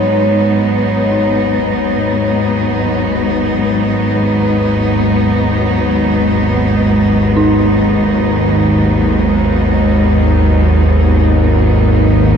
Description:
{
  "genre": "dark ambient drone",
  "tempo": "free time",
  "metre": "none",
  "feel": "none",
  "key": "unclear",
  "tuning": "A4 = 440 Hz",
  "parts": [
    { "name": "rich symphonic cello section", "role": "sustained chords", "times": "0.0-12.4 s", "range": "Ab2 to Eb4", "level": "-13 LUFS", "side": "equal", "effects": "none" },
    { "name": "dark detuned synth bell", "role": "arpeggios", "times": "0.0-12.4 s", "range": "Eb4", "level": "-23 LUFS", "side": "right 2 dB", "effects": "chorus, ping-pong delay" },
    { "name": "bowed-like drone", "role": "drone", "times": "0.8-12.4 s", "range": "Ab1 to Eb2", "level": "-14 LUFS", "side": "equal", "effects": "built-in reverb" },
    { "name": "bronze singing bowl", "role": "texture", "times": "0.0-12.4 s", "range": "Db5", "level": "-23 LUFS", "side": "left 1 dB", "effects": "none" }
  ],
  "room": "wet huge ambient reverb, RT60 8.6 s",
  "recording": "dark, warm production",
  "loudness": "-10 LUFS",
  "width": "side -7 dB against mid",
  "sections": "0.0-12.4 A section",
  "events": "fade-in on synth drone 0.0-12.4",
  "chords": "0.0 Abm"
}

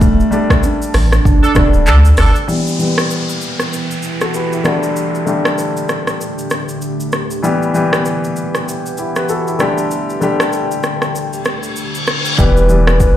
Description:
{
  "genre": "afrobeats",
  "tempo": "97 BPM",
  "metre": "4/4",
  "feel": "swing 58% on 16ths",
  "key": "E minor",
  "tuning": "A4 = 440 Hz",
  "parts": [
    { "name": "hollow clarinet-like synth lead", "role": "melody", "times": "0.0-2.0, 12.4-13.2 s", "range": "A3 to B4", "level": "-18 LUFS", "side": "right 1 dB", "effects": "chorus, tape echo" },
    { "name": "warm grand piano", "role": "accompaniment", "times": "0.0-13.2 s", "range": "D3 to B4", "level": "-18 LUFS", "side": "left 2 dB", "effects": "low-pass filter" },
    { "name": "warm sub bass", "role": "bass", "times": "0.0-2.3, 12.4-13.1 s", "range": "D1 to D2", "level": "-11 LUFS", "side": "equal", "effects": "none" },
    { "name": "afro-pop drum kit", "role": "drums", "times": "0.0-13.2 s", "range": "handclaps, hi-hat, kick drum, rim click, shaker", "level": "-17 LUFS", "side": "equal", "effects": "overdrive" },
    { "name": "clear horn section", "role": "second line", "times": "1.4-2.4 s", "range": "D4 to A4", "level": "-18 LUFS", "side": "right 4 dB", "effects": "none" },
    { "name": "deep dark ambient pad", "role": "sustained chords", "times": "3.4-12.4 s", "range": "D3 to G4", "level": "-23 LUFS", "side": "right 1 dB", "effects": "chorus, built-in reverb, low-pass filter" },
    { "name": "downlifter and reverse cymbal", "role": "sound effects", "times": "2.5-12.4 s", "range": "none", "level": "-23 LUFS", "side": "left 1 dB", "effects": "none" }
  ],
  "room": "light reverb",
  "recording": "played on a big sound system in a bare room, stone room reverb",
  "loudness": "-13 LUFS",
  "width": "side -11 dB against mid",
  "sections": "0.0-2.5 A section; 2.5-12.4 B section",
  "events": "band accent 0.0-2.5; filter sweep 2.5-12.4; reverse cymbal 11.4-12.4",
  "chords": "0.0 Dsus4; 2.5 Em; 4.7 Dsus4; 7.4 Em; 9.6 Dsus4; 12.4 Em"
}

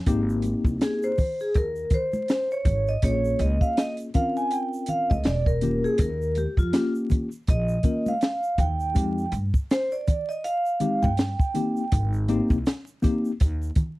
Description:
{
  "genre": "hip hop, jazz-hop",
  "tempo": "81 BPM",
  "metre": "4/4",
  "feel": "swing 58% on 16ths",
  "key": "Ab major",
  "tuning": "A4 = 440 Hz",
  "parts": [
    { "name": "tine electric piano", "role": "accompaniment", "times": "0.1-13.3 s", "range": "Ab3 to Bb4", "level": "-26 LUFS", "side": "left 2 dB", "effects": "medium stereo tremolo" },
    { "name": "upright bass", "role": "bass", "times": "0.1-13.7 s", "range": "E1 to G2", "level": "-26 LUFS", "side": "equal", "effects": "none" },
    { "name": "compact cocktail drum kit", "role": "drums", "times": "0.1-14.0 s", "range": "hi-hat, kick drum, snare drum", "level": "-23 LUFS", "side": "equal", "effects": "none" },
    { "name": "egg shaker and congas", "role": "percussion", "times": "0.1-14.0 s", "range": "none", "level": "-34 LUFS", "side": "right 1 dB", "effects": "none" },
    { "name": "vibraphone with medium mallets", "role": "melody", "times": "0.8-12.1 s", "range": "F4 to Ab5", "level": "-26 LUFS", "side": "right 1 dB", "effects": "none" }
  ],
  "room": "little or no reverb",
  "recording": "dry, close 1970s-style studio recording, vinyl crackle",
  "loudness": "-22 LUFS",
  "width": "side -18 dB against mid",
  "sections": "0.1-14.0 A section",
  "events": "vibraphone solo 0.1-14.0",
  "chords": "0.1 Abmaj9; 3.0 Bbm9; 5.3 Edim7; 6.0 Eb9; 9.0 Fm9; 11.9 Abmaj9"
}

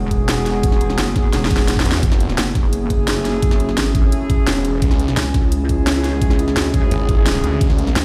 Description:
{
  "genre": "dark technical drum and bass",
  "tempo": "172 BPM",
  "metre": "4/4",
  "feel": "straight",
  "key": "unclear",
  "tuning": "A4 = 439 Hz",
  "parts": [
    { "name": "metallic inharmonic drone", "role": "sustained chords", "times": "0.0-8.0 s", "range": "C#3 to G#4", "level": "-27 LUFS", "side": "equal", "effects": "chorus, built-in reverb, sidechain pumping" },
    { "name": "mellow brass ensemble", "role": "stabs", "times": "0.0-7.6 s", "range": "A3 to G#4", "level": "-28 LUFS", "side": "equal", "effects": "dub echo" },
    { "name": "pulsing pluck wobble bass", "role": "bass", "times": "0.0-8.0 s", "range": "E1 to D2", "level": "-22 LUFS", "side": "equal", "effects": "chorus" },
    { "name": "drum and bass drum kit", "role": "drums", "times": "0.1-8.0 s", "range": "hi-hat, snare drum", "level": "-25 LUFS", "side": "equal", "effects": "overdrive" },
    { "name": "electronic kick drum", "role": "drums", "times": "0.1-7.7 s", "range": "none", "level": "-19 LUFS", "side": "equal", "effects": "overdrive" },
    { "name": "snarling distorted saw bass", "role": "bass", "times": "1.9-2.4, 4.5-7.9 s", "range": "E1 to E2", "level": "-21 LUFS", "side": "equal", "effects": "tube saturation" }
  ],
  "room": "light reverb, digital ambience",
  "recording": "played on a big sound system in a bare room, stone room reverb",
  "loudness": "-17 LUFS",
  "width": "mono",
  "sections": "0.0-8.0 A section",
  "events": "drum fill 1.3-2.0",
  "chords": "0.0 E6; 2.0 F#m7; 4.8 C#m"
}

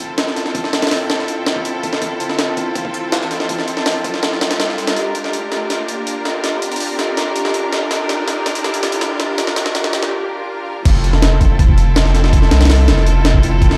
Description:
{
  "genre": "drum and bass, jungle",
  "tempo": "163 BPM",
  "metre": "4/4",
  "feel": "straight",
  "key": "unclear",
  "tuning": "A4 = 440 Hz",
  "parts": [
    { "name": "clear symphonic string section", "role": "sustained chords", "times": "0.0-13.8 s", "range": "C4 to Bb4", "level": "-24 LUFS", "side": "equal", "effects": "none" },
    { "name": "jungle sampler-style drum kit", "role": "drums", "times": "0.0-13.8 s", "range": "crash cymbal, hi-hat, kick drum, snare drum", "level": "-19 LUFS", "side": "equal", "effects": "overdrive, high-pass filter on hats, high-pass filter on kick, high-pass filter on snare, high-pass filter on cymbals, high-pass filter on room" },
    { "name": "riser and swell", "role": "sound effects", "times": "1.0-10.9 s", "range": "none", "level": "-33 LUFS", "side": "equal", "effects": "none" },
    { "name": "saturated sub bass", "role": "bass", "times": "10.9-13.8 s", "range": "F1 to C2", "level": "-15 LUFS", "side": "equal", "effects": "tube saturation" }
  ],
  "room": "light reverb, digital ambience",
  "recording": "played on a big sound system in a bare room, large studio reverb, high-pass filter",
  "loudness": "-17 LUFS",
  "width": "mono",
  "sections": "0.0-10.9 A section; 10.9-13.8 B section",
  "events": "build-up 0.0-10.9; riser 1.0-10.1; drum fill 5.0-10.1; break 10.1-10.9; swell 10.1-10.9; drop 10.9-13.8",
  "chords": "0.0 Fmaj7; 5.0 Gm7; 10.9 Fmaj7"
}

